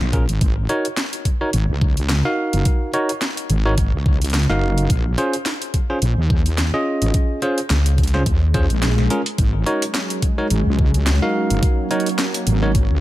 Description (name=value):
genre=glitch hop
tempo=107 BPM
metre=4/4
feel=swing 56% on 16ths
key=unclear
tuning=A4 = 443 Hz
part: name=wobble bass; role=bass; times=0.0-13.0 s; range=Gb1 to Eb2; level=-18 LUFS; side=equal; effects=chorus, tube saturation
part: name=drum and bass drum kit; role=drums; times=0.0-12.9 s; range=hi-hat, snare drum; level=-24 LUFS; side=equal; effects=overdrive
part: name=bell-like tine electric piano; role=stabs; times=0.1-12.7 s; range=Db4 to F5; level=-23 LUFS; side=equal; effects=sidechain pumping, low-pass filter, ping-pong delay
part: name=electronic kick drum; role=drums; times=0.1-12.9 s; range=none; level=-18 LUFS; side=equal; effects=overdrive
part: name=swell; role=sound effects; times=8.5-9.4 s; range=none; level=-28 LUFS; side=left 4 dB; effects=none
part: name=warm analog pad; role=sustained chords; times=9.7-13.0 s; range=Gb3 to Db4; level=-24 LUFS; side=right 2 dB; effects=chorus, vintage 12-bit sampler grit, sidechain pumping
room=digital ambience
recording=none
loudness=-16 LUFS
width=side -16 dB against mid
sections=0.0-13.0 A section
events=swell 8.5-9.4; kick drops out 8.8-9.4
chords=0.4 Ab9sus4; 4.9 Bbm7; 9.4 Ab9sus4